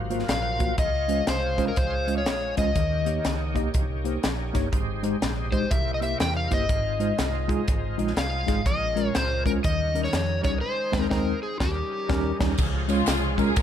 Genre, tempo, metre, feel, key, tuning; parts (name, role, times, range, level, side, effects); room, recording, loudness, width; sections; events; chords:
uptempo gospel; 122 BPM; 4/4; swing 63% on 8ths; Ab major; A4 = 440 Hz
mellow tine electric piano; accompaniment; 0.0-13.5 s; Ab2 to Eb5; -28 LUFS; equal; medium stereo tremolo
bright tonewheel organ; sustained chords; 0.0-13.6 s; Eb3 to Db5; -36 LUFS; right 3 dB; slow rotary speaker, overdrive, chorus vibrato
mellow French horn section; sustained chords; 0.0-12.6 s; Eb3 to F5; -39 LUFS; left 2 dB
vintage muted fingered electric bass; bass; 0.0-13.6 s; G1 to F2; -30 LUFS; equal
crisp fusion drum kit; drums; 0.1-13.6 s; crash cymbal, hi-hat, kick drum, ride cymbal, snare drum; -27 LUFS; equal
overdriven slide guitar; melody; 0.3-12.4 s; G4 to G5; -29 LUFS; left 2 dB; tape echo
tambourine and handclaps; percussion; 12.6-13.6 s; -37 LUFS; right 1 dB
dark studio string section; melody; 12.9-13.6 s; Ab3 to Bb4; -27 LUFS; left 2 dB
light reverb; -22 LUFS; side -9 dB against mid
0.0-12.6 A section; 12.6-13.6 B section
band accent 10.6-12.6
0.0 Ab13; 0.8 Dbmaj7; 2.8 Eb7; 4.7 Abmaj7; 5.7 C7; 6.7 Fm7/Ab; 8.7 Bbm7; 9.6 Eb7; 10.6 Ab/Eb; 11.6 Eb7; 12.6 Db